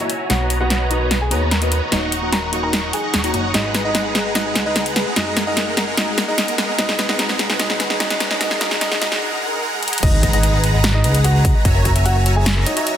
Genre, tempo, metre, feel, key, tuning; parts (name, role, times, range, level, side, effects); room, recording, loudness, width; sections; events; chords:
future bass; 148 BPM; 4/4; half-time; G# minor; A4 = 440 Hz
soft round pluck; accompaniment; 0.0-3.5 s; A#3 to C#5; -26 LUFS; left 2 dB; ensemble chorus, sidechain pumping, tape echo
supersaw chords; riff; 0.0-12.9 s; G#3 to C#6; -22 LUFS; right 1 dB; analog chorus, sidechain pumping, low-pass filter
big-room dance drum kit; drums; 0.0-12.9 s; crash cymbal, hi-hat, snare drum; -20 LUFS; equal
riser and impact; sound effects; 0.0-11.7 s; -30 LUFS; equal
dark baby grand piano; melody; 0.3-12.9 s; D#4 to A#5; -25 LUFS; equal; sidechain pumping, digital delay
fat analog bass; bass; 0.3-12.7 s; D#1 to D#2; -20 LUFS; equal; sidechain pumping
thumb-piano-like synth pluck; arpeggios; 3.5-13.0 s; F#4 to E5; -30 LUFS; left 2 dB; chorus, sidechain pumping, tape echo
airy dreamy lead; arpeggios; 10.0-12.9 s; A#5; -28 LUFS; equal; chorus, sidechain pumping
electronic kick drum; drums; 10.0-11.9 s; -17 LUFS; equal
moderate lush hall reverb, RT60 1.7 s, digital ambience; dense, heavily limited modern master, high-pass filter; -15 LUFS; side -10 dB against mid
0.0-10.0 A section; 10.0-13.0 B section
build-up 0.0-10.0; drum fill 0.0-9.2, 9.8; filter sweep 0.0-10.0; break 9.2-10.0; drop 10.0-13.0; impact 10.0-11.7
0.3 Bmaj7; 1.9 D#m7; 3.5 G#m7; 5.2 F#; 6.8 Bmaj7; 8.4 D#m; 10.0 G#m7; 11.7 F#7